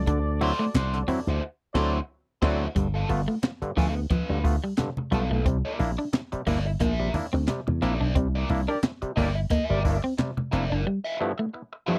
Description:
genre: funk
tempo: 89 BPM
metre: 4/4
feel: swing 56% on 16ths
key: unclear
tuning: A4 = 439 Hz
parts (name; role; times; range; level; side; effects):
- mellow horn section; second line; 0.0-2.6, 8.7-10.0 s; F#4 to D5; -34 LUFS; equal; none
- slap bass with an envelope filter; bass; 0.0-10.8 s; F1 to E2; -29 LUFS; equal; none
- electric guitar at the edge of break-up; riff; 0.1-12.0 s; F3 to D4; -31 LUFS; equal; none
- overdriven clav; stabs; 0.1-12.0 s; G2 to F4; -34 LUFS; equal; none
- compact cocktail drum kit; drums; 0.1-10.7 s; crash cymbal, handclaps, hi-hat, kick drum, snare drum; -30 LUFS; equal; none
- congas; percussion; 0.1-10.5 s; none; -35 LUFS; equal; none
- crunchy overdriven guitar; accompaniment; 0.4-12.0 s; B3 to E5; -35 LUFS; equal; wah
room: little or no reverb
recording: dry, close 1970s-style studio recording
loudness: -26 LUFS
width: mono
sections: 0.0-2.8 A section; 2.8-12.0 B section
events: band accent 1.4-2.8; break 10.9-12.0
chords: 0.0 D9; 2.8 G9; 5.5 C9; 10.9 G13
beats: | 0.07 0.74 1.42 2.09 | 2.76 3.44 4.11 4.78 | 5.46 6.13 6.81 7.49 | 8.16 8.84 9.51 10.19 | 10.86 11.54

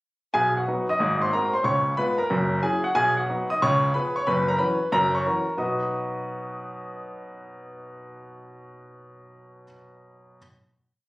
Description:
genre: jazz, stride piano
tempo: 184 BPM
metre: 4/4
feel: swing 66% on 8ths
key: B major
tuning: A4 = 441 Hz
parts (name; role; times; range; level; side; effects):
- clear baby grand piano; solo; 0.3-10.4 s; F#1 to D#6; -22 LUFS; equal; none
room: moderate club reverb, RT60 0.8 s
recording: recorded on a phone in the room, studio reverb, compression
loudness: -21 LUFS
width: side -20 dB against mid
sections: 0.3-5.6 A section; 5.6-8.2 final chord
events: none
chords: 0.3 B; 1.0 G#7; 1.6 C#7; 2.3 F#7; 3.0 B; 3.6 C#7; 4.3 F#7sus4; 4.9 F#7; 5.6 B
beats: | 0.33 0.66 0.99 1.32 | 1.65 1.98 2.30 2.63 | 2.96 3.29 3.61 3.94 | 4.26 4.59 4.92 5.24 | 5.57 5.89 6.22 6.54 | 6.87 7.20 7.52 7.85

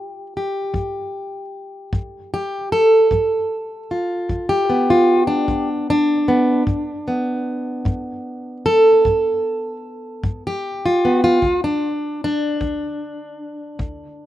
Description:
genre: acoustic country blues, solo or duo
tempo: 50 BPM (dotted quarters)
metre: 12/8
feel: straight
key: unclear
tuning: A4 = 443 Hz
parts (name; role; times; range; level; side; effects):
- fingerpicked plugged-in steel-string acoustic guitar; melody; 0.0-14.3 s; D2 to A4; -17 LUFS; equal; none
- kick drum; drums; 0.7-14.0 s; none; -26 LUFS; equal; none
room: little or no reverb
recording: recorded outdoors, with no room sound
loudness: -16 LUFS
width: side -13 dB against mid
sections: 0.0-14.3 A section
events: none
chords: 0.0 G7; 11.4 N.C.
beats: 0.73 | 1.92 3.11 4.29 5.48 | 6.67 7.86 9.04 10.23 | 11.42 12.61 13.79

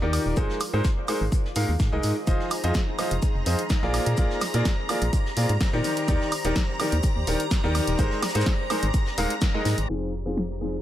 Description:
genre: piano house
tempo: 126 BPM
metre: 4/4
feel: straight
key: F dorian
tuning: A4 = 442 Hz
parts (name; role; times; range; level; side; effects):
- clear upright piano; riff; 0.0-10.7 s; Eb3 to F5; -28 LUFS; left 1 dB; sidechain pumping, analog delay
- organ-like FM bass; bass; 0.0-10.8 s; Eb1 to Bb2; -26 LUFS; equal; sidechain pumping
- granular cloud pad; texture; 0.0-10.8 s; Eb4 to D5; -35 LUFS; equal; built-in reverb, sidechain pumping
- punchy analog drum machine; drums; 0.1-10.8 s; hi-hat, snare drum, woodblock; -31 LUFS; right 1 dB; overdrive, low-pass filter on hats, low-pass filter on perc, low-pass filter on snare, analog delay
- vintage brush drum kit; drums; 0.1-9.8 s; hi-hat, shaker, snare drum; -40 LUFS; left 2 dB; sidechain pumping on hats, high-pass filter on hats, high-pass filter on snare, sidechain pumping on perc, high-pass filter on perc, high-pass filter on room, analog delay
- electronic kick drum; drums; 0.4-9.5 s; none; -24 LUFS; equal; none
- string machine, violins; sustained chords; 2.3-10.8 s; Bb5; -34 LUFS; equal; ensemble chorus, sidechain pumping
room: little or no reverb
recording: echo-heavy mix, low-pass filter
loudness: -22 LUFS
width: side -12 dB against mid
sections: 0.0-9.9 A section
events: band accent 9.4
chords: 0.4 Abadd9; 2.3 Fm7; 3.9 Bb7; 5.8 Ebmaj7; 8.0 Abadd9; 9.9 Fm7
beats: | 0.37 0.84 1.32 1.80 | 2.27 2.75 3.23 3.70 | 4.18 4.65 5.13 5.61 | 6.08 6.56 7.04 7.51 | 7.99 8.46 8.94 9.42 | 9.89 10.37

